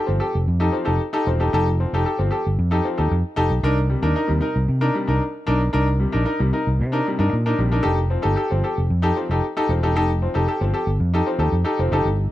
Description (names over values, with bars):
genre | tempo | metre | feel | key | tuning
disco | 114 BPM | 4/4 | straight | unclear | A4 = 439 Hz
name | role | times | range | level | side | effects
bright concert grand piano | accompaniment | 0.0-12.1 s | C3 to Bb4 | -22 LUFS | left 1 dB | none
fingered electric bass | bass | 0.1-12.3 s | E1 to C3 | -20 LUFS | equal | none
room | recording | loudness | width
light reverb, small room ambience | none | -18 LUFS | side -14 dB against mid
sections
0.0-12.1 A section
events
none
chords
0.0 F9; 3.6 Cm7; 7.8 F9